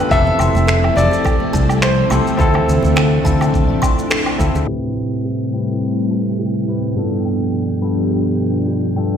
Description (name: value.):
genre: sunset chillout.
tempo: 105 BPM.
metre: 4/4.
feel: swing 54% on 16ths.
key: A minor.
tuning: A4 = 440 Hz.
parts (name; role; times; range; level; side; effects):
clear concert grand piano; melody; 0.0-4.1 s; A4 to E5; -20 LUFS; left 1 dB; ping-pong delay.
bell-like tine electric piano; accompaniment; 0.0-9.2 s; G2 to B4; -20 LUFS; equal; auto-pan, ping-pong delay.
soft string machine; sustained chords; 0.0-9.2 s; B2 to G4; -21 LUFS; equal; ensemble chorus.
kalimba; arpeggios; 0.0-9.2 s; G4 to C6; -29 LUFS; left 3 dB; low-pass filter, ping-pong delay.
fretless electric bass; bass; 0.1-4.6 s; F1 to D2; -16 LUFS; equal; none.
electronic kick drum; drums; 0.1-4.5 s; none; -18 LUFS; equal; none.
electronic shaker, woodblock and finger snaps; drums; 0.1-9.2 s; none; -22 LUFS; right 2 dB; none.
congas and bongos; percussion; 0.3-4.7 s; none; -29 LUFS; right 3 dB; none.
twinkling granular texture; texture; 5.4-9.2 s; G5 to G6; -45 LUFS; left 1 dB; built-in reverb.
room: moderate lush hall reverb, RT60 2.5 s.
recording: played on a big sound system in a bare room, large studio reverb, low-pass filter.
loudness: -14 LUFS.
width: side -8 dB against mid.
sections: 0.0-4.7 A section; 4.7-9.2 B section.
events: band accent 4.1; filter sweep on string machine 4.7-9.2; filter sweep on kalimba 4.7-9.2; filter sweep 4.7-9.2.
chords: 0.1 Fmaj7; 2.4 Dm7; 4.7 Am7; 7.0 G7.